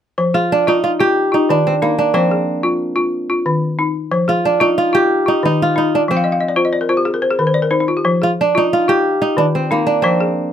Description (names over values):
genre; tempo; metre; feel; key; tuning
west african traditional; 122 BPM (dotted quarters); 12/8; straight; F dorian; A4 = 440 Hz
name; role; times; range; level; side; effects
balafon; arpeggios; 0.2-10.5 s; Eb3 to F5; -16 LUFS; left 2 dB; none
kora; melody; 0.3-10.5 s; Bb3 to G4; -16 LUFS; right 2 dB; none
room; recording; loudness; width
little or no reverb; close, detailed microphones; -13 LUFS; side -9 dB against mid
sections
0.2-10.5 A section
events
balafon fill 6.2-8.1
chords
0.2 Fm; 1.2 Ebmaj9; 2.1 Fm; 3.1 Ebsus2; 4.1 Fm; 5.1 Ebadd9; 6.1 N.C.; 8.1 Fm; 9.0 N.C.